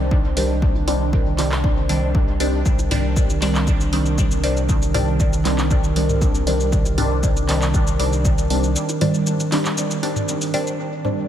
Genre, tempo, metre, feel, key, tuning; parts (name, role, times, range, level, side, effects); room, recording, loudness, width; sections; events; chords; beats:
dub techno; 118 BPM; 4/4; straight; C minor; A4 = 440 Hz
warbly tape-like pad; sustained chords; 0.0-11.3 s; Eb3 to C5; -26 LUFS; right 2 dB; chorus, built-in reverb, sidechain pumping
filtered dub chord stab; stabs; 0.0-11.2 s; Eb3 to D4; -22 LUFS; equal; phaser, sidechain pumping, dub echo
round analog bass; bass; 0.0-8.8 s; C2; -22 LUFS; equal; sidechain pumping
electronic kick drum; drums; 0.1-8.4 s; -20 LUFS; equal
punchy analog drum machine; drums; 0.4-10.8 s; handclaps, hi-hat, shaker; -28 LUFS; right 1 dB; dub echo
electronic bongos and toms; percussion; 0.8-11.2 s; -32 LUFS; left 1 dB; overdrive, sidechain pumping on perc, sidechain pumping on toms, dub echo
bubbling stepped-filter texture; texture; 11.0-11.3 s; D5; -39 LUFS; right 2 dB
moderate cathedral reverb, RT60 5.5 s; dreamy mix soaked in reverb; -17 LUFS; side -10 dB against mid
0.0-10.8 A section
break 8.8-10.8
0.0 Cmadd9
0.11 | 0.62 1.13 1.64 2.15 | 2.66 3.17 3.67 4.18 | 4.69 5.20 5.71 6.22 | 6.72 7.23 7.74 8.25 | 8.76 9.27 9.78 10.28 | 10.79